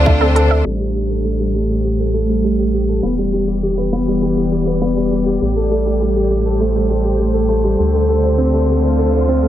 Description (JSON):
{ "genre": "piano and strings electronica", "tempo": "101 BPM", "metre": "4/4", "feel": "straight", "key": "A minor", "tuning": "A4 = 438 Hz", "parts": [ { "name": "bright studio string section", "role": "sustained chords", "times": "0.0-9.5 s", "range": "A2 to D5", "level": "-21 LUFS", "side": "equal", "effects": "shimmer reverb" }, { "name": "warm grand piano", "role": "riff", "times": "0.0-9.5 s", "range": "G3 to D5", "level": "-17 LUFS", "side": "equal", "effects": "ping-pong delay, shimmer reverb" }, { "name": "round analog bass", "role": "bass", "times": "0.0-9.5 s", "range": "E1 to D2", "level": "-18 LUFS", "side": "equal", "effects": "sidechain pumping" }, { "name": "analog pluck", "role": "arpeggios", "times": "0.1-0.6 s", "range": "E4 to E5", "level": "-22 LUFS", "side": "right 3 dB", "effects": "chorus, sidechain pumping, ping-pong delay, shimmer reverb" }, { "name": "electronic hi-hat", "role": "drums", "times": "0.4-9.4 s", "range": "none", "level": "-34 LUFS", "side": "right 5 dB", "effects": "low-pass filter on hats, low-pass filter on room" } ], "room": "light reverb", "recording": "low-pass filter", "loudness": "-14 LUFS", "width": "side -12 dB against mid", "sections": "0.7-9.5 A section", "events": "filter sweep 0.7-9.5", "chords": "0.0 Dm7; 0.7 Am7; 3.0 Em7; 5.4 Am7; 7.8 Dm7" }